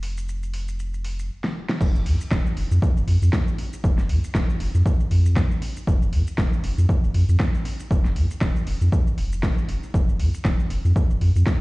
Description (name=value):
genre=deep house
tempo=118 BPM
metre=4/4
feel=swing 56% on 16ths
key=unclear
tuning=A4 = 439 Hz
part: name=warm sub bass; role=bass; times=0.0-11.4 s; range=Eb1 to F2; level=-20 LUFS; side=equal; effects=sidechain pumping
part: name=deep house drum kit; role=drums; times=0.0-11.6 s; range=crash cymbal, hi-hat, shaker, snare drum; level=-30 LUFS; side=equal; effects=small room ambience
part: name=electronic kick drum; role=drums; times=1.8-11.6 s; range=none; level=-22 LUFS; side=equal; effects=small room ambience
room=little or no reverb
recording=played on a big sound system in a bare room, cassette tape, stone room reverb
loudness=-19 LUFS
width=side -22 dB against mid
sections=0.0-1.8 A section; 1.8-11.6 B section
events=drum fill 1.4-1.8; drop 1.8-11.6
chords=none